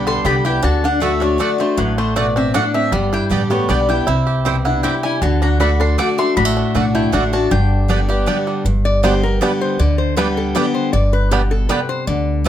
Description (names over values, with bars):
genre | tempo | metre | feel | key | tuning
bluegrass | 157 BPM | 3/4 | straight | G major | A4 = 439 Hz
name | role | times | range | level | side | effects
mandolin | melody | 0.0-8.5 s | B4 to D6 | -22 LUFS | left 1 dB | none
lap resonator guitar | second line | 0.0-12.5 s | F#3 to D5 | -23 LUFS | left 3 dB | none
picked steel-string acoustic guitar | accompaniment | 0.0-12.5 s | G2 to G4 | -20 LUFS | left 2 dB | none
bluegrass banjo | arpeggios | 0.0-12.5 s | D3 to G4 | -23 LUFS | right 5 dB | none
upright bass | bass | 0.0-12.5 s | G1 to D2 | -19 LUFS | equal | none
mandolin | stabs | 0.2-12.5 s | A3 to G5 | -23 LUFS | right 7 dB | none
room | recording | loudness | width
light reverb | close, detailed microphones | -14 LUFS | side -11 dB against mid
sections
0.0-8.7 A section; 8.7-12.5 B section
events
resonator guitar played with a steel bar solo 8.7-12.5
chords
0.0 G; 0.6 D; 2.9 G; 4.1 C; 5.2 D; 7.5 G